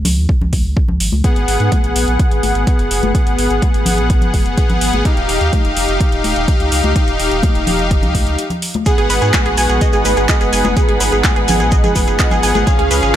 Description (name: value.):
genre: progressive house.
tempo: 126 BPM.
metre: 4/4.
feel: straight.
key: G# dorian.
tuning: A4 = 439 Hz.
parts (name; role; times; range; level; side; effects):
saturated sub bass; bass; 0.0-13.1 s; D#1 to G#2; -18 LUFS; equal; tube saturation, sidechain pumping.
congas; percussion; 0.0-12.6 s; none; -23 LUFS; left 2 dB; sidechain pumping on perc.
deep house drum kit; drums; 0.1-13.1 s; handclaps, hi-hat; -21 LUFS; right 1 dB; sidechain pumping on hats.
electronic kick drum; drums; 0.3-12.8 s; none; -15 LUFS; equal; none.
soft supersaw; stabs; 1.2-13.2 s; B3 to F#5; -18 LUFS; left 2 dB; sidechain pumping, digital delay.
dark chamber string section; sustained chords; 8.9-13.2 s; C#3 to B4; -23 LUFS; equal; sidechain pumping.
analog pluck; arpeggios; 8.9-13.1 s; G#4 to G#5; -18 LUFS; right 4 dB; chorus, sidechain pumping, digital delay.
shekere; percussion; 8.9-13.1 s; none; -27 LUFS; left 5 dB; none.
room: light reverb, small room ambience.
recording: none.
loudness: -12 LUFS.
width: side -11 dB against mid.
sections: 0.0-13.2 A section.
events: break 8.4-8.9.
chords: 0.0 C#5; 1.2 G#m7; 5.1 D#add9; 8.9 G#m7.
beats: 0.29 0.77 | 1.24 1.72 2.19 2.67 | 3.15 3.62 4.10 4.58 | 5.05 5.53 6.00 6.48 | 6.96 7.43 7.91 8.38 | 8.86 9.34 9.81 10.29 | 10.77 11.24 11.72 12.20 | 12.67 13.15.